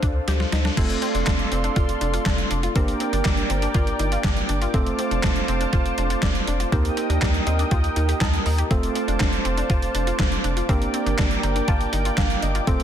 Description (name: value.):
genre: synth-pop.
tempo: 121 BPM.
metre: 4/4.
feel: straight.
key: unclear.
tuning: A4 = 440 Hz.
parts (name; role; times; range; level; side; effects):
warm analog pad; sustained chords; 0.0-12.8 s; D4 to Eb6; -28 LUFS; equal; wide subtle chorus.
analog pluck; arpeggios; 0.0-12.8 s; C4 to G4; -30 LUFS; left 4 dB; chorus, tape echo.
rubbery square bass; bass; 0.0-12.8 s; F1 to Eb2; -25 LUFS; equal; none.
gated 80s digital drum machine; drums; 0.0-12.8 s; crash cymbal, handclaps, hi-hat, kick drum, snare drum; -23 LUFS; equal; gated reverb, gated reverb snare, overdrive.
tine electric piano; accompaniment; 0.8-12.8 s; A3 to Bb5; -28 LUFS; moving between right 1 dB and right 10 dB; auto-pan.
room: light reverb, digital ambience.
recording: dense, heavily limited modern master.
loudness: -19 LUFS.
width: side -9 dB against mid.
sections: 0.8-12.8 A section.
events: drum fill 0.3-0.8; tine electric piano fill 7.2-8.7, 11.2-12.7.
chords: 0.0 Dm7; 0.8 F6; 2.8 Gm; 4.7 F6; 6.7 Eb; 8.7 F6; 10.7 Gm.